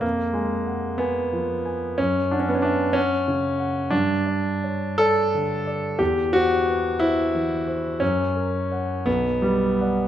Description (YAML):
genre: classical, romantic character piece for solo piano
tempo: 50-63 BPM (dotted quarters)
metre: 6/8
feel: rubato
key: unclear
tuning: A4 = 438 Hz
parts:
  - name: warm grand piano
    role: solo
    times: 0.0-10.1 s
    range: B1 to Ab5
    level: -20 LUFS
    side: equal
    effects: none
room: moderate recital hall reverb, RT60 1.4 s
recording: none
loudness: -20 LUFS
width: side -11 dB against mid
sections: 0.0-10.1 A section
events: none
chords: 0.0 Fdim; 2.0 F#5; 3.9 G5; 6.0 C/E; 8.0 F#; 9.1 Bm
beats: | 0.04 1.00 | 1.99 2.96 | 3.92 5.00 | 6.00 7.02 | 8.01 9.07